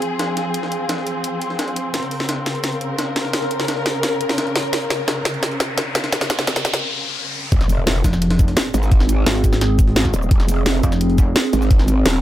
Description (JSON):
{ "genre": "dark technical drum and bass", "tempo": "172 BPM", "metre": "4/4", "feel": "straight", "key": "F minor", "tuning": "A4 = 440 Hz", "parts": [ { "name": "dark symphonic string section", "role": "sustained chords", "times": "0.0-7.5 s", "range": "Db3 to Bb4", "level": "-25 LUFS", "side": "left 2 dB", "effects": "sidechain pumping" }, { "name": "breakbeat sampler-style drum kit", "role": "drums", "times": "0.0-12.2 s", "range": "hi-hat, snare drum", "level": "-28 LUFS", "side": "equal", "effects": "high-pass filter on snare, small room reverb, high-pass filter on hats" }, { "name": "drum and bass drum kit", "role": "drums", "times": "0.0-12.1 s", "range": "cabasa, hi-hat, snare drum", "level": "-21 LUFS", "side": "equal", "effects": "high-pass filter on snare, small room reverb, high-pass filter on hats, high-pass filter on toms, high-pass filter on perc" }, { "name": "warbly tape-like pad", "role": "texture", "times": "0.0-12.2 s", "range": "C4 to C6", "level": "-26 LUFS", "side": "right 2 dB", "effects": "chorus, built-in reverb, phaser, sidechain pumping" }, { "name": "riser and impact", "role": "sound effects", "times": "3.6-8.9 s", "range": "none", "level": "-28 LUFS", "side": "equal", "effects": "none" }, { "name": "growl bass", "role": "bass", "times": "7.5-12.2 s", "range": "Eb1 to Ab1", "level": "-18 LUFS", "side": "equal", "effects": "chorus, tube saturation" }, { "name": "electronic kick drum", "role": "drums", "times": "7.5-11.8 s", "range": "none", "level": "-15 LUFS", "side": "equal", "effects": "small room reverb" }, { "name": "pulsing pluck wobble bass", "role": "bass", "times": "8.0-11.3 s", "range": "F1 to Ab1", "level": "-18 LUFS", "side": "equal", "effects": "chorus" } ], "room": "light reverb", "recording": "none", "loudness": "-16 LUFS", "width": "side -13 dB against mid", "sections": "0.0-7.5 A section; 7.5-12.2 B section", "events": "build-up 0.0-7.5; drum fill 1.9-6.8; riser 3.6-7.5; break 6.8-7.5; drop 7.5-12.2; impact 7.5-8.9", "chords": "0.0 Fm; 1.9 Bbmadd9; 7.5 Fm" }